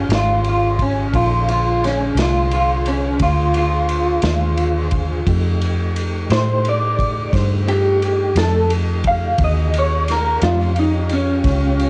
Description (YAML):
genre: slow blues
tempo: 58 BPM (dotted quarters)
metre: 12/8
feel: straight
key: unclear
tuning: A4 = 440 Hz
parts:
  - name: electric guitar through a small old amp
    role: melody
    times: 0.0-11.9 s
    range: Db4 to F5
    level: -21 LUFS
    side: equal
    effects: ensemble chorus, cassette tape
  - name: tonewheel organ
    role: sustained chords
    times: 0.0-11.9 s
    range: D3 to C5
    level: -32 LUFS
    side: equal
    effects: chorus vibrato, slow rotary speaker, cassette tape
  - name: vintage muted fingered electric bass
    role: bass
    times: 0.0-11.9 s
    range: Ab1 to A2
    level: -21 LUFS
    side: equal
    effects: none
  - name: vintage drum kit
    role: drums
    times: 0.1-11.9 s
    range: kick drum, ride cymbal, snare drum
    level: -26 LUFS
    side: equal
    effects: cassette tape
room: studio reverb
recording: home recording on cassette, nothing above 10.5 kHz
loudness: -18 LUFS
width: mono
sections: 0.0-11.9 A section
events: clean electric guitar solo 0.0-11.9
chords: 0.0 Eb9 (rootless); 1.1 Bb9; 5.3 F9; 9.4 Eb9